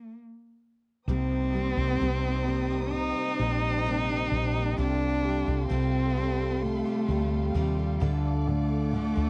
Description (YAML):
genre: pop ballad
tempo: 65 BPM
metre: 4/4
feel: straight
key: unclear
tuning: A4 = 437 Hz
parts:
  - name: warm cello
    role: melody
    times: 0.0-9.3 s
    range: G3 to Eb4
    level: -32 LUFS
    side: equal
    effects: none
  - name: warm concert grand piano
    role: accompaniment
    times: 1.1-9.3 s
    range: C3 to G3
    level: -34 LUFS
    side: equal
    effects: none
  - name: warm studio string section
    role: sustained chords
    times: 1.1-9.3 s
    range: A4 to Eb6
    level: -42 LUFS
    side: equal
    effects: none
  - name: picked steel-string acoustic guitar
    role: arpeggios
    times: 1.1-9.3 s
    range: C3 to A4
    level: -40 LUFS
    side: equal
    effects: none
  - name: woody fretless electric bass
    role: bass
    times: 1.1-9.3 s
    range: Bb1 to Eb2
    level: -31 LUFS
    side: equal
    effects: none
room: little or no reverb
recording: dry, close 1970s-style studio recording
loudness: -28 LUFS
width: mono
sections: 0.0-1.1 A section; 1.1-9.3 B section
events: stop 0.0-1.1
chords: 0.0 N.C.; 1.1 Cm7; 4.8 Fadd9/C; 8.0 Dm